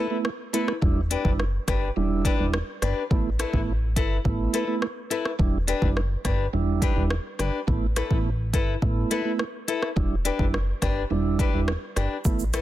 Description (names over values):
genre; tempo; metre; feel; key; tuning
dancehall; 105 BPM; 4/4; straight; E minor; A4 = 439 Hz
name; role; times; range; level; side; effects
mellow tonewheel organ; accompaniment; 0.0-12.4 s; G3 to E4; -29 LUFS; right 6 dB; slow rotary speaker, sidechain pumping
flamenco guitar; arpeggios; 0.0-12.6 s; D4 to B4; -30 LUFS; left 6 dB; ping-pong delay
afro-pop drum kit; drums; 0.2-12.6 s; hi-hat, kick drum, rim click, shaker; -26 LUFS; equal; none
plucky analog bass; bass; 0.8-12.6 s; E1 to A1; -26 LUFS; equal; none
room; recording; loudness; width
little or no reverb; dense, heavily limited modern master; -22 LUFS; side -14 dB against mid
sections
0.0-12.6 A section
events
none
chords
0.0 Asus2; 0.8 Em7; 3.1 Asus2; 5.4 Em7; 7.7 Asus2; 10.0 Em7